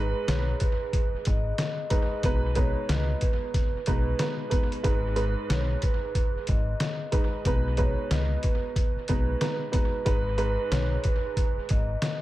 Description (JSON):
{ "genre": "hip hop, boom-bap hip-hop", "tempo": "92 BPM", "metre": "4/4", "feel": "swing 63% on 16ths", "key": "G# minor", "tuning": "A4 = 440 Hz", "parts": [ { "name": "vibraphone with medium mallets", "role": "melody", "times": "0.0-12.2 s", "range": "B4 to D#5", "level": "-34 LUFS", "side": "right 2 dB", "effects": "high-pass filter, low-pass filter, dub echo" }, { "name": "warm upright piano", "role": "accompaniment", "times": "0.0-12.2 s", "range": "G#2 to B4", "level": "-32 LUFS", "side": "right 2 dB", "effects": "high-pass filter, low-pass filter, dub echo" }, { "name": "deep dub fingered electric bass", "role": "bass", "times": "0.0-11.9 s", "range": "G#1 to C#2", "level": "-28 LUFS", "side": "equal", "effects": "none" }, { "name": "trip hop sampler-style drum kit", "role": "drums", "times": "0.3-12.2 s", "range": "hi-hat, kick drum, snare drum", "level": "-27 LUFS", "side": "equal", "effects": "none" } ], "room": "light reverb, digital ambience", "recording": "echo-heavy mix", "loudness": "-24 LUFS", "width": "side -16 dB against mid", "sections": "0.0-12.2 A section", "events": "none", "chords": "0.0 G#m; 2.2 B6; 4.8 G#m; 7.5 B6; 10.1 G#m", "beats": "0.28 0.93 1.58 | 2.23 2.89 3.54 4.19 | 4.84 5.49 6.15 6.80 | 7.45 8.10 8.76 9.41 | 10.06 10.71 11.36 12.02" }